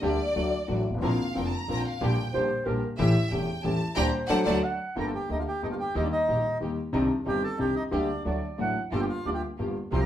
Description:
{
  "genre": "tango",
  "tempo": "182 BPM",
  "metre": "3/4",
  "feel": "rubato",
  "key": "G minor",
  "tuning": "A4 = 444 Hz",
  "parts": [
    { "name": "rich symphonic violin section", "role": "second line", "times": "0.0-4.6 s", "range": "D5 to Bb5", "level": "-32 LUFS", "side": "left 1 dB", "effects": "none" },
    { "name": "warm concert grand piano", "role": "accompaniment", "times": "0.0-10.1 s", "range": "E1 to G4", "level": "-28 LUFS", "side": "left 2 dB", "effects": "none" },
    { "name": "muted studio string section", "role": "stabs", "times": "0.0-10.1 s", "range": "A3 to Bb4", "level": "-36 LUFS", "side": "right 2 dB", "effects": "none" },
    { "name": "upright bass", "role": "bass", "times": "0.0-10.1 s", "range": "E1 to Eb2", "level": "-33 LUFS", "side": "right 1 dB", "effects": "none" },
    { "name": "breathy clarinet", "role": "second line", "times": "2.3-5.0, 8.3-8.8 s", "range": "Bb4 to F#5", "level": "-31 LUFS", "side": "right 3 dB", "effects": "none" },
    { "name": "bandoneon", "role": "melody", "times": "5.0-10.1 s", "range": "D4 to C6", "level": "-30 LUFS", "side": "right 1 dB", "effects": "none" }
  ],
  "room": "wet studio reverb, RT60 0.6 s",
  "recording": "band playing live in one room",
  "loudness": "-25 LUFS",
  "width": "side -11 dB against mid",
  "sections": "0.0-5.0 A section; 5.0-10.1 B section",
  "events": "violin section solo 0.0-5.0; band accent 4.0-5.0",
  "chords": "0.0 Gm/D; 0.4 D; 1.0 Bbadd9; 2.0 Gm/Bb; 3.0 A7; 4.0 Gm/D; 4.3 D; 5.0 Gmadd9; 6.0 Eb; 6.9 Cmadd9; 7.9 Gm/D; 8.3 D; 8.9 Gm7"
}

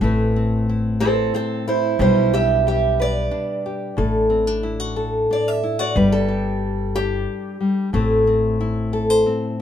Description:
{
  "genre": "acoustic folk duo or small band",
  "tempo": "91 BPM",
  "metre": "3/4",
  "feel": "straight",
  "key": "A dorian",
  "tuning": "A4 = 440 Hz",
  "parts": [
    { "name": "nylon-string guitar", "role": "accompaniment", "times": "0.0-9.6 s", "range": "A2 to C5", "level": "-20 LUFS", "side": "left 2 dB", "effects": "none" },
    { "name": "upright bass", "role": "bass", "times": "0.0-9.2 s", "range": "G1 to B1", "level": "-24 LUFS", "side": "equal", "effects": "none" },
    { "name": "picked old ladder-braced acoustic guitar", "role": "melody", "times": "1.0-8.9 s", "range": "C4 to E5", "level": "-22 LUFS", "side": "right 4 dB", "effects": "none" }
  ],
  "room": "light reverb",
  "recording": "minimal, uncompressed stereo recording",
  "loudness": "-17 LUFS",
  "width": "side -9 dB against mid",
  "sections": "0.0-9.6 A section",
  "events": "steel-string acoustic guitar solo 0.0-9.6",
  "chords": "0.0 Amadd9; 2.0 G/B; 4.0 D/A; 6.0 G; 7.9 Am"
}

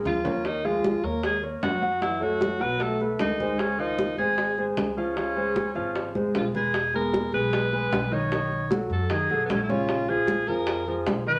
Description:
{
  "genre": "Afro-Cuban jazz",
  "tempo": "152 BPM",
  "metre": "4/4",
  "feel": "straight",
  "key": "Db major",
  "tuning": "A4 = 435 Hz",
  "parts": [
    { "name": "warm concert grand piano", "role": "accompaniment", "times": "0.0-11.4 s", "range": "Db3 to Gb5", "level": "-30 LUFS", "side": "equal", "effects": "none" },
    { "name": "upright bass", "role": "bass", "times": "0.0-11.4 s", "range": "Fb1 to Gb2", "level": "-38 LUFS", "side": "equal", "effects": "none" },
    { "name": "clear alto saxophone", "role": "melody", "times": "0.1-11.4 s", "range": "Cb4 to Db5", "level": "-30 LUFS", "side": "equal", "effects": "none" },
    { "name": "breathy trombone", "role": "second line", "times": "0.1-6.3 s", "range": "Db3 to Cb4", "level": "-37 LUFS", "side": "equal", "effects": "none" },
    { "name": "bongos", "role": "percussion", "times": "0.1-11.3 s", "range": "none", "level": "-33 LUFS", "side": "equal", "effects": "none" },
    { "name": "congas", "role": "percussion", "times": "0.1-11.4 s", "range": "none", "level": "-36 LUFS", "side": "equal", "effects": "none" }
  ],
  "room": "wet studio reverb, RT60 0.8 s",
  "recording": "none",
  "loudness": "-26 LUFS",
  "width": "mono",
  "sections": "0.0-6.7 A section; 6.7-11.4 B section",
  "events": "drum fill 0.0-0.4, 6.2-6.7",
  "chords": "0.4 Ebm11; 2.0 Gbm; 2.8 Cb9; 3.6 Dbmaj9; 6.7 E; 8.3 Cb9; 9.9 Bbm7"
}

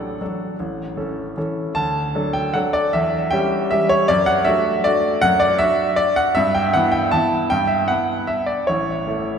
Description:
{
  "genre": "classical, piano waltz",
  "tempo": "156 BPM",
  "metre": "3/4",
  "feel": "uneven beats, rubato",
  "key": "D major",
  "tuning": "A4 = 439 Hz",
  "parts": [
    { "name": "clear grand piano", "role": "solo", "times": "0.0-9.4 s", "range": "A1 to A5", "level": "-17 LUFS", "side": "equal", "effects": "none" }
  ],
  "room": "wet cathedral reverb, RT60 4.2 s",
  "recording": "recorded in a church or concert hall",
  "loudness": "-17 LUFS",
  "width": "side -7 dB against mid",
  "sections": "0.0-1.8 A section; 1.8-9.4 B section",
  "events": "none",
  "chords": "0.0 D/A; 0.6 A; 1.8 D; 2.9 C#dim/E; 4.1 D/F#; 6.4 Em/G; 8.7 A"
}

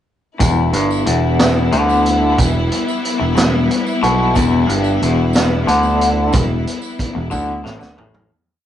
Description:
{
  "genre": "psychedelic rock",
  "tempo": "61 BPM (dotted quarters)",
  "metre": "6/8",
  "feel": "straight",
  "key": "E minor",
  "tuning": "A4 = 439 Hz",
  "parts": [
    { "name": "rich chamber string section", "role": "sustained chords", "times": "0.4-8.3 s", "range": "G3 to E4", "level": "-21 LUFS", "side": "left 3 dB", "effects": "none" },
    { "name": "twangy electric guitar", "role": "riff", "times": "0.4-8.3 s", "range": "E2 to D3", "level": "-17 LUFS", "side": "left 2 dB", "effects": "tremolo" },
    { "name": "picked electric bass", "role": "bass", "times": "0.4-8.3 s", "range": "E1 to D2", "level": "-19 LUFS", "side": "right 2 dB", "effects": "none" },
    { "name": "vintage drum kit", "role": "drums", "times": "0.4-8.3 s", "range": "hi-hat, kick drum, snare drum, toms", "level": "-19 LUFS", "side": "right 1 dB", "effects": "none" },
    { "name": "tambourine", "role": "percussion", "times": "0.4-8.0 s", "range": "none", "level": "-35 LUFS", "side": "right 6 dB", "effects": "none" }
  ],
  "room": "moderate small room ambience, RT60 0.5 s",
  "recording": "rough rehearsal-room recording, nothing above 10.4 kHz",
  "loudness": "-13 LUFS",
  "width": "side -10 dB against mid",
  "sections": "0.4-8.3 riff",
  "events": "fade-out 6.3-8.3; drum fill 7.3-8.3",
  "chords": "0.4 Em"
}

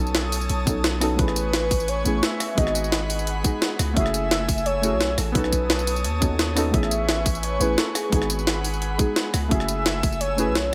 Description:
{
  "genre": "liquid drum and bass",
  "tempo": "173 BPM",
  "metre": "4/4",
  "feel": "straight",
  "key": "A lydian",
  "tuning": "A4 = 443 Hz",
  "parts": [
    { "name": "warm velvety synth lead", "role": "melody", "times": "0.0-10.7 s", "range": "G#4 to E5", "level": "-30 LUFS", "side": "equal", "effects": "chorus, tape echo" },
    { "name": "deep mellow chord stab", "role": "accompaniment", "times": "0.0-10.7 s", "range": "G#3 to A4", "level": "-31 LUFS", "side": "equal", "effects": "chorus" },
    { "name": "airy breathy pad", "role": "sustained chords", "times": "0.0-10.7 s", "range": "A3 to E6", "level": "-34 LUFS", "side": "equal", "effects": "chorus, sidechain pumping" },
    { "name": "long sustained 808-style bass", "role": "bass", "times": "0.0-10.7 s", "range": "F#1 to D#2", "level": "-29 LUFS", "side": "equal", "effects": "none" },
    { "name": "jungle sampler-style drum kit", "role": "drums", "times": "0.1-10.6 s", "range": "hi-hat, rim click, snare drum, tambourine", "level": "-28 LUFS", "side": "equal", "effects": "none" },
    { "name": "electronic kick drum", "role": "drums", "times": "0.7-10.1 s", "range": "none", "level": "-25 LUFS", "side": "equal", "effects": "none" }
  ],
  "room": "light reverb",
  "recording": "none",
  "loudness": "-23 LUFS",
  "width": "mono",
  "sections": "0.0-10.7 A section",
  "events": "none",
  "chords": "0.0 B9; 1.2 Amaj9; 2.6 G#m7; 4.0 F#m9; 5.4 B9; 6.7 Amaj9; 8.1 G#m7; 9.5 F#m9"
}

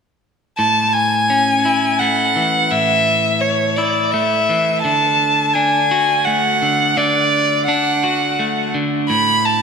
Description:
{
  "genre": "rock",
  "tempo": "85 BPM",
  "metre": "3/4",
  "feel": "straight",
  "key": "A major",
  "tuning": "A4 = 438 Hz",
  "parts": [
    { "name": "rich violin", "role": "melody", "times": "0.6-9.6 s", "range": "C#5 to B5", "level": "-15 LUFS", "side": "equal", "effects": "analog delay" },
    { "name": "electric guitar at the edge of break-up", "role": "arpeggios", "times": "0.6-9.6 s", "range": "A2 to F#4", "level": "-19 LUFS", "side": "left 1 dB", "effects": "slapback echo, analog delay" }
  ],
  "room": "wet lush hall reverb, RT60 1.8 s, small room ambience",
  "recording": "big arena sound",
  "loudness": "-14 LUFS",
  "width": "side -6 dB against mid",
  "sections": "0.6-9.6 A section",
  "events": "none",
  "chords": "0.6 A; 4.8 D; 9.1 N.C."
}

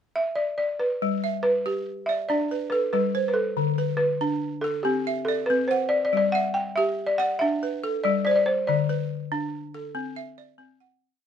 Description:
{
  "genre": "west african traditional, West African string and xylophone music",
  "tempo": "94 BPM (dotted quarters)",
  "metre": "12/8",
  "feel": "straight",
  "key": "G major",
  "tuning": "A4 = 441 Hz",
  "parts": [
    { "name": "balafon", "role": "melody", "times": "0.2-9.3 s", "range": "G4 to G5", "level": "-24 LUFS", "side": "equal", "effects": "none" },
    { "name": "balafon", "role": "arpeggios", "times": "1.0-11.3 s", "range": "D3 to F#5", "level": "-27 LUFS", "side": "left 1 dB", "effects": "none" }
  ],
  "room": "light reverb",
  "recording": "minimal, uncompressed stereo recording",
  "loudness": "-22 LUFS",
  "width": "side -8 dB against mid",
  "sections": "0.0-1.0 pickup bar; 1.0-11.2 A section",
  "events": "fade-out 8.7-11.2",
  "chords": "0.0 N.C.; 1.0 G; 3.6 D5; 4.9 C; 6.1 G; 8.7 D5; 10.0 C"
}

